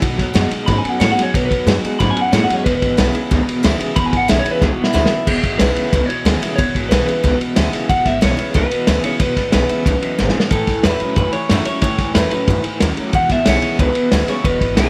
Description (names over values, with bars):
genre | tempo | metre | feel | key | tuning
rockabilly | 183 BPM | 4/4 | straight | E mixolydian | A4 = 440 Hz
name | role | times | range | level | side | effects
picked steel-string acoustic guitar | accompaniment | 0.0-14.9 s | E2 to F#4 | -27 LUFS | equal | none
electric guitar through a small old amp | riff | 0.0-14.9 s | E2 to G#3 | -25 LUFS | equal | tremolo
upright bass | bass | 0.0-14.9 s | E1 to A2 | -23 LUFS | equal | none
vintage drum kit | drums | 0.0-14.8 s | crash cymbal, kick drum, ride cymbal, snare drum | -20 LUFS | equal | none
electric guitar through a small old amp | melody | 0.7-14.9 s | E4 to B5 | -22 LUFS | equal | tape echo
room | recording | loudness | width
light reverb | none | -16 LUFS | mono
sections
0.0-5.3 A section; 5.3-14.9 B section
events
clean electric guitar solo 0.0-5.3; drum fill 4.6-5.3, 10.2-10.5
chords
0.0 B; 2.7 E; 10.5 A; 13.1 E